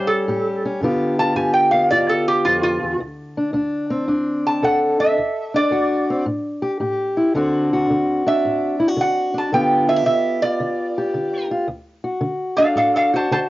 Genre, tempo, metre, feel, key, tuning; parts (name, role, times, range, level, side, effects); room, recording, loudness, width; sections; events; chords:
acoustic country blues, solo or duo; 110 BPM; 4/4; swing 67% on 8ths; A4 = 440 Hz
lap resonator guitar; melody; 0.0-13.5 s; F4 to A5; -18 LUFS; right 1 dB; cassette tape
fingerpicked steel-string acoustic guitar; accompaniment; 0.0-13.5 s; D2 to A4; -20 LUFS; left 1 dB
light reverb; home recording on cassette, nothing above 7.5 kHz; -17 LUFS; side -17 dB against mid
0.0-7.3 A section; 7.3-13.5 B section
resonator guitar played with a steel bar solo 7.3-13.5
0.0 A7; 0.8 G7; 3.0 D7; 6.3 A5; 7.3 D7; 9.5 G7; 11.7 D